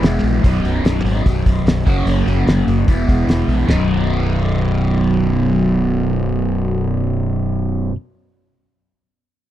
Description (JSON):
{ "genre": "classic rock", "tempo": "148 BPM", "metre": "4/4", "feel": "straight", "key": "B major", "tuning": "A4 = 440 Hz", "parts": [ { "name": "crunchy overdriven guitar", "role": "riff", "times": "0.0-8.0 s", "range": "B1 to F#4", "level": "-18 LUFS", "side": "right 1 dB", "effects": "phaser" }, { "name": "fuzz fingered electric bass", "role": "bass", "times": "0.0-7.9 s", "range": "B0 to A#1", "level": "-19 LUFS", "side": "equal", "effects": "overdrive" }, { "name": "cloth-damped thuddy drum kit", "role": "drums", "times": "0.0-3.8 s", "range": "crash cymbal, hi-hat, kick drum, snare drum, toms", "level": "-16 LUFS", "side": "equal", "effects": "none" } ], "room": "small room ambience", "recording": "dry, close 1970s-style studio recording", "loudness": "-14 LUFS", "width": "side -12 dB against mid", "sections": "0.0-3.7 A section; 3.7-6.9 B section", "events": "none", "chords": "0.4 B; 1.9 F#; 2.9 E; 3.7 B" }